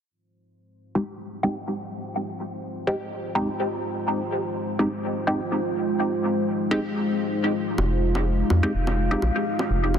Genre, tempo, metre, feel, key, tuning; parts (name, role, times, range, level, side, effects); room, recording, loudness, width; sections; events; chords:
dub techno; 125 BPM; 4/4; swing 54% on 16ths; F minor; A4 = 440 Hz
deep dark ambient pad; sustained chords; 1.7-10.0 s; Ab3 to F5; -27 LUFS; equal; chorus, built-in reverb
filtered dub chord stab; stabs; 1.0-9.2 s; Ab3 to G4; -27 LUFS; equal; chorus, phaser, dub echo
round analog bass; bass; 7.8-10.0 s; F1 to F2; -22 LUFS; equal
bongos; percussion; 7.8-10.0 s; -30 LUFS; right 1 dB; overdrive, dub echo
moderate huge ambient reverb, RT60 6.2 s; dense, heavily limited modern master; -23 LUFS; side -8 dB against mid
0.1-10.0 A section
0.1 Fm7